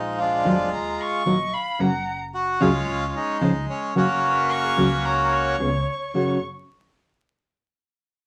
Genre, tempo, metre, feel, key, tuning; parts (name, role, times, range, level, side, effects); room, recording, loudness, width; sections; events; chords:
tango; 111 BPM; 4/4; rubato; F# major; A4 = 440 Hz
bandoneon; melody; 0.0-5.6 s; E#3 to F#4; -25 LUFS; equal
upright bass; bass; 0.0-6.4 s; E#1 to D#2; -34 LUFS; equal
nylon-string guitar; accompaniment; 0.4-6.4 s; F#2 to G#4; -24 LUFS; equal
clear violin; second line; 0.7-6.4 s; A#5 to C#6; -31 LUFS; equal
concert flute; second line; 1.3-6.4 s; G#4 to F#5; -33 LUFS; equal
moderate club reverb, RT60 0.5 s; vinyl crackle; -23 LUFS; mono
0.0-6.1 A section; 6.1-8.3 B section
0.0 A#7; 0.7 D#sus2; 1.8 F#; 2.9 C#5; 3.4 C#; 4.0 F#; 5.6 C#7; 6.1 F#5